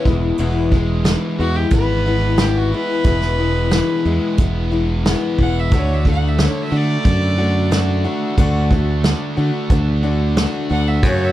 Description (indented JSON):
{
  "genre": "folk rock and heartland rock",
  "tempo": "90 BPM",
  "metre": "4/4",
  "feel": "straight",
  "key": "unclear",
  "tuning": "A4 = 440 Hz",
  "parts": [
    { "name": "picked steel-string acoustic guitar", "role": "accompaniment", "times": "0.0-11.3 s", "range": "E2 to F#4", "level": "-22 LUFS", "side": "left 5 dB", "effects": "none" },
    { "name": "biting overdriven guitar", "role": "riff", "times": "0.0-11.3 s", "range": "E2 to F#4", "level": "-24 LUFS", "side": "right 1 dB", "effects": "none" },
    { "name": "modern bright fingered electric bass", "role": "bass", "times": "0.1-11.3 s", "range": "E1 to D3", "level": "-18 LUFS", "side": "equal", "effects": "none" },
    { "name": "soft brush drum kit", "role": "drums", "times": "0.1-11.2 s", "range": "hi-hat, kick drum, snare drum", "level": "-18 LUFS", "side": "equal", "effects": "none" },
    { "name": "clear fiddle", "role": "melody", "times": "1.4-11.3 s", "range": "F#4 to F#5", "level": "-24 LUFS", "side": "right 2 dB", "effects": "none" },
    { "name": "overdriven tonewheel organ", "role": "sustained chords", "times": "5.7-11.3 s", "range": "A3 to A4", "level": "-32 LUFS", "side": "right 1 dB", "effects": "slow rotary speaker" }
  ],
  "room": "small room reverb",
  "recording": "none",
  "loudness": "-15 LUFS",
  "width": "side -14 dB against mid",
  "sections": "0.0-11.3 A section",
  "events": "fiddle solo 0.0-11.3",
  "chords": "0.1 E; 5.7 D",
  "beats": "| 0.40 1.06 1.73 2.39 | 3.06 3.72 4.39 5.05 | 5.72 6.38 7.05 7.72 | 8.38 9.04 9.71 10.37 | 11.04"
}